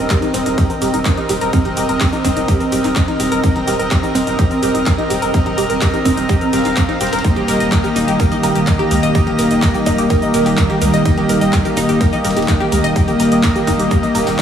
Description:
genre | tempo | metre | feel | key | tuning
progressive house | 126 BPM | 4/4 | straight | Eb major | A4 = 440 Hz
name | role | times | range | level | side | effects
soft supersaw | stabs | 0.0-14.4 s | Bb3 to F5 | -18 LUFS | left 1 dB | sidechain pumping, diffuse ambient delay
round analog bass | bass | 0.0-14.3 s | Eb1 to Db2 | -23 LUFS | equal | sidechain pumping
drifting glass-harmonics texture | texture | 0.6-14.4 s | Bb5 | -31 LUFS | right 4 dB | chorus, built-in reverb, sidechain pumping
tight sequenced synth | arpeggios | 0.1-14.4 s | C4 to Eb5 | -20 LUFS | right 1 dB | chorus, phaser, sidechain pumping, diffuse ambient delay
big-room dance drum kit | drums | 0.1-14.4 s | handclaps, hi-hat, shaker | -25 LUFS | equal | overdrive
breakbeat sampler-style drum kit | drums | 0.1-14.4 s | hi-hat, ride cymbal, snare drum | -34 LUFS | right 2 dB | none
electronic kick drum | drums | 0.1-14.4 s | none | -17 LUFS | equal | overdrive
lush unison pad | sustained chords | 7.2-14.4 s | Eb3 to G4 | -19 LUFS | right 1 dB | chorus, sidechain pumping
room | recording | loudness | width
moderate church reverb, RT60 3.7 s | dreamy mix soaked in reverb, small room ambience | -13 LUFS | side -8 dB against mid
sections
0.0-14.4 A section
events
none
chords
0.0 Cm7/Eb; 7.2 Eb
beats
0.10 0.58 1.05 | 1.53 2.01 2.48 2.96 | 3.44 3.91 4.39 4.86 | 5.34 5.82 6.29 6.77 | 7.25 7.72 8.20 8.67 | 9.15 9.63 10.10 10.58 | 11.05 11.53 12.01 12.48 | 12.96 13.44 13.91 14.39

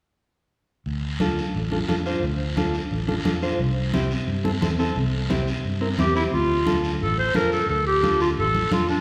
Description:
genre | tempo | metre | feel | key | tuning
latin, cumbia | 176 BPM | 4/4 | straight | D minor | A4 = 436 Hz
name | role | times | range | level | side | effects
fingered electric bass | bass | 0.9-9.0 s | A1 to G2 | -28 LUFS | equal | none
guiro | percussion | 0.9-9.0 s | none | -36 LUFS | equal | none
mellow electric guitar | accompaniment | 1.2-9.0 s | C4 to C5 | -29 LUFS | equal | none
congas | percussion | 1.2-8.9 s | none | -32 LUFS | equal | none
clear clarinet | melody | 6.0-9.0 s | D4 to C5 | -24 LUFS | equal | none
room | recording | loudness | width
wet recital hall reverb, RT60 1.8 s | recorded in a church or concert hall | -23 LUFS | mono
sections
0.9-6.3 A section; 6.3-9.0 B section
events
none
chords
0.9 Dm; 3.6 C; 6.3 Dm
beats
| 0.86 1.20 1.54 1.89 | 2.23 2.57 2.91 3.25 | 3.60 3.94 4.28 4.62 | 4.96 5.30 5.64 5.99 | 6.33 6.67 7.01 7.35 | 7.69 8.03 8.38 8.72

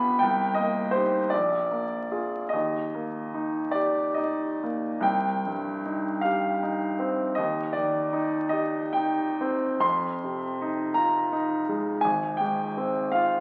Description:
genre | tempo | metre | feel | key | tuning
classical, romantic nocturne for solo piano | 44-58 BPM (dotted quarters) | 12/8 | rubato | Eb major, C minor from 5.1 s | A4 = 440 Hz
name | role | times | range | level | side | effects
clear baby grand piano | solo | 0.0-13.4 s | Ab1 to C6 | -27 LUFS | equal | none
room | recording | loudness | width
wet recital hall reverb, RT60 1.4 s | very old 78 rpm record, vinyl crackle | -27 LUFS | mono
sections
0.0-5.1 A section; 5.1-13.4 B section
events
none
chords
0.2 Cm7; 1.3 Bb7; 2.5 Eb; 5.1 Cm; 7.4 Cm/Eb; 9.8 Fm7; 12.0 Fm/Ab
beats
| 0.22 1.32 2.53 3.75 | 5.06 6.24 7.38 8.52 | 9.83 10.95 12.04 13.15

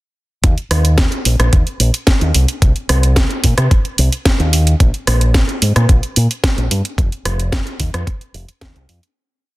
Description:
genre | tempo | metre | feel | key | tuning
nu-disco, nu disco | 110 BPM | 4/4 | straight | Eb major | A4 = 440 Hz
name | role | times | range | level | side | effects
fingered electric bass with an envelope filter | bass | 0.4-9.0 s | F1 to C3 | -14 LUFS | equal | sidechain pumping
electronic kick drum | drums | 0.4-8.7 s | none | -14 LUFS | equal | none
house drum kit | drums | 0.4-9.1 s | hi-hat, rim click, snare drum | -18 LUFS | right 1 dB | overdrive
room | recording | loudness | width
little or no reverb | dense, heavily limited modern master | -12 LUFS | side -19 dB against mid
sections
0.4-9.2 groove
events
fade-out 6.3-9.2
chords
none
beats
| 0.44 0.98 1.53 2.07 | 2.62 3.17 3.71 4.26 | 4.80 5.35 5.89 6.44 | 6.98 7.53 8.07 8.62

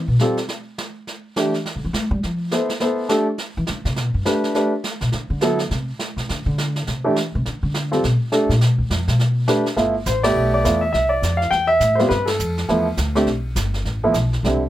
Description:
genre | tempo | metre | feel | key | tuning
jazz piano trio | 207 BPM | 4/4 | swing 61% on 8ths | G mixolydian | A4 = 435 Hz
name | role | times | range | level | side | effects
upright bass | bass | 0.0-14.7 s | G1 to A3 | -21 LUFS | equal | none
warm grand piano | melody | 0.2-14.6 s | D3 to G5 | -18 LUFS | equal | none
jazz brush drum kit | drums | 0.2-14.7 s | brushed snare drum, hi-hat, ride cymbal, snare drum | -28 LUFS | right 3 dB | none
room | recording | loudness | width
light reverb | none | -18 LUFS | side -13 dB against mid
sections
0.0-9.8 A section; 9.8-14.7 B section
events
upright bass solo 0.0-9.8; band accent 10.2, 12.3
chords
0.5 N.C.; 1.6 G13; 5.1 D7(no3); 7.4 Gadd9 (rootless); 9.8 G13; 10.9 C69; 12.1 G13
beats
0.20 | 0.49 0.78 1.07 1.36 | 1.65 1.94 2.23 2.52 | 2.81 3.10 3.39 3.68 | 3.97 4.26 4.55 4.84 | 5.13 5.42 5.71 6.00 | 6.29 6.58 6.87 7.16 | 7.45 7.74 8.03 8.32 | 8.61 8.90 9.19 9.48 | 9.78 10.07 10.36 10.65 | 10.94 11.23 11.53 11.82 | 12.11 12.40 12.69 12.98 | 13.28 13.57 13.86 14.15 | 14.44

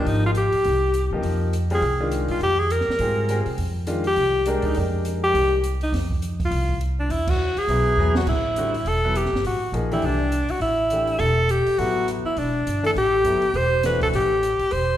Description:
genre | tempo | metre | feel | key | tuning
modal jazz | 205 BPM | 4/4 | swing 59% on 8ths | F dorian, A dorian from 8.3 s | A4 = 439 Hz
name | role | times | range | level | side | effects
bright alto saxophone | melody | 0.0-15.0 s | D4 to C5 | -22 LUFS | equal | none
clear baby grand piano | accompaniment | 0.0-5.6, 7.7-14.3 s | D3 to Bb4 | -28 LUFS | left 2 dB | none
upright bass | bass | 0.1-15.0 s | E1 to C3 | -25 LUFS | equal | none
open jazz drum kit | drums | 0.1-14.8 s | crash cymbal, hi-hat, kick drum, snare drum | -31 LUFS | right 2 dB | none
room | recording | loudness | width
moderate scoring stage reverb, RT60 1.7 s | recorded in a church or concert hall | -19 LUFS | side -12 dB against mid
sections
0.0-8.3 A section; 8.3-15.0 B section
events
band accent 7.2; drum fill 8.0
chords
0.0 Fm11; 7.1 E; 8.3 A7sus4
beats
| 0.07 0.36 0.66 0.95 | 1.24 1.53 1.83 2.12 | 2.41 2.71 3.00 3.29 | 3.58 3.88 4.17 4.46 | 4.76 5.05 5.34 5.64 | 5.93 6.22 6.51 6.81 | 7.10 7.39 7.69 7.98 | 8.27 8.57 8.86 9.15 | 9.45 9.74 10.03 10.33 | 10.62 10.91 11.21 11.50 | 11.79 12.08 12.38 12.67 | 12.96 13.26 13.55 13.84 | 14.14 14.43 14.72

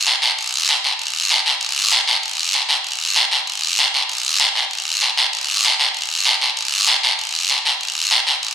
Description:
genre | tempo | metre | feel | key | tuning
latin | 194 BPM | 4/4 | straight | none | none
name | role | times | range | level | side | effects
guiro | percussion | 0.1-8.5 s | none | -14 LUFS | equal | none
room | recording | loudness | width
wet recital hall reverb, RT60 1.4 s | recorded in a church or concert hall | -14 LUFS | side -9 dB against mid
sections
0.0-1.6 A section; 1.6-8.5 A section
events
none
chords
none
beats
0.06 | 0.37 0.68 0.99 1.30 | 1.61 1.92 2.23 2.54 | 2.85 3.16 3.47 3.78 | 4.09 4.40 4.71 5.02 | 5.33 5.63 5.95 6.25 | 6.56 6.87 7.18 7.49 | 7.80 8.11 8.42

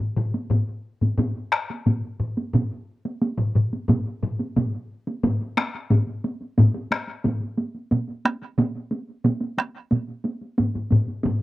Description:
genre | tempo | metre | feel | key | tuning
japanese traditional, taiko drum ensemble | 89 BPM | 4/4 | straight | none | none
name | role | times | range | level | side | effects
taiko ensemble | percussion | 0.0-11.4 s | none | -22 LUFS | left 2 dB | none
taiko ensemble | percussion | 0.3-11.4 s | none | -25 LUFS | right 2 dB | slapback echo
taiko ensemble | percussion | 2.5-10.1 s | none | -24 LUFS | right 2 dB | none
room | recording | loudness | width
little or no reverb | recorded outdoors, with no room sound | -22 LUFS | side -16 dB against mid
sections
0.0-5.2 A section; 5.2-11.4 B section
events
none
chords
none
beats
0.50 1.18 1.86 | 2.54 3.21 3.89 4.56 | 5.24 5.91 6.58 7.25 | 7.92 8.59 9.26 9.92 | 10.59 11.25

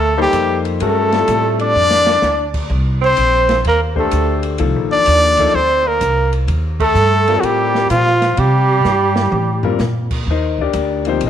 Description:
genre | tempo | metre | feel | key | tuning
modal jazz | 127 BPM | 4/4 | swing 67% on 8ths | unclear | A4 = 440 Hz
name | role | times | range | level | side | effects
clear trumpet | melody | 0.0-9.8 s | F4 to D5 | -15 LUFS | left 2 dB | none
warm tenor saxophone | second line | 0.0-9.8 s | F3 to D4 | -20 LUFS | right 11 dB | none
upright bass | bass | 0.0-11.3 s | G1 to C3 | -18 LUFS | equal | none
clear concert grand piano | accompaniment | 0.2-11.3 s | Eb3 to Eb5 | -20 LUFS | left 10 dB | none
open jazz drum kit | drums | 0.3-11.3 s | crash cymbal, hi-hat, kick drum, ride cymbal, snare drum, toms | -26 LUFS | equal | none
room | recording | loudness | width
light reverb, studio reverb | 1960s-style stereo with parts hard left and right | -12 LUFS | side -9 dB against mid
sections
0.0-10.3 A section; 10.3-11.3 B section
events
drum fill 1.8-2.2, 8.8-9.8; band accent 6.7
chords
0.0 Gm11; 2.7 Cm11; 10.3 Cm9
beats
0.33 | 0.80 1.28 1.75 2.22 | 2.70 3.17 3.64 4.12 | 4.59 5.06 5.54 6.01 | 6.48 6.96 7.43 7.90 | 8.38 8.85 9.32 9.80 | 10.27 10.74 11.22

